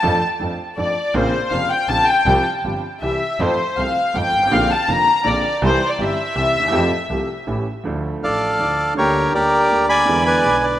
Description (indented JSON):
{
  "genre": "tango",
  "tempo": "162 BPM",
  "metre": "3/4",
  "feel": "rubato",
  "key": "F major",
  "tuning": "A4 = 440 Hz",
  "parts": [
    { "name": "warm studio violin section", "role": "second line", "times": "0.0-7.5 s", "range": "C5 to Bb5", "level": "-18 LUFS", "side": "left 2 dB", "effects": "none" },
    { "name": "clear upright piano", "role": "accompaniment", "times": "0.0-10.8 s", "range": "F1 to A4", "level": "-23 LUFS", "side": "right 1 dB", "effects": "none" },
    { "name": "clear double bass", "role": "bass", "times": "0.0-10.8 s", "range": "F1 to F2", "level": "-26 LUFS", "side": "right 1 dB", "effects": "none" },
    { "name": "bandoneon", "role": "melody", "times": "8.2-10.8 s", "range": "G4 to B5", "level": "-15 LUFS", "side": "equal", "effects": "tape echo" }
  ],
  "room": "moderate lush hall reverb, RT60 2.9 s",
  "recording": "rough home demo mix",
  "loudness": "-16 LUFS",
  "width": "side -12 dB against mid",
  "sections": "0.0-7.9 A section; 7.9-10.8 B section",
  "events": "violin section solo 0.0-7.9",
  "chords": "0.0 Dm/F; 1.1 Bbmadd9; 2.3 Csus4; 3.0 C; 3.4 F; 4.5 Bbadd9; 5.6 C; 6.7 Fadd9; 7.5 A7; 7.9 Dm; 9.0 Gm/D; 10.1 E7"
}